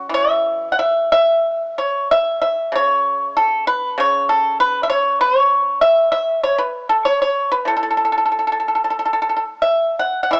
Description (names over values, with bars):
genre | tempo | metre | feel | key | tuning
chinese traditional, Chinese solo plucked strings | 85-101 BPM | 4/4 | rubato | unclear | A4 = 440 Hz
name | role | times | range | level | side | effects
pipa | solo | 0.0-10.4 s | A2 to F#5 | -14 LUFS | equal | cassette tape
room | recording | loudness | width
light reverb, studio reverb | home recording on cassette, small speaker sound | -14 LUFS | side -36 dB against mid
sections
0.0-10.3 A section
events
none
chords
none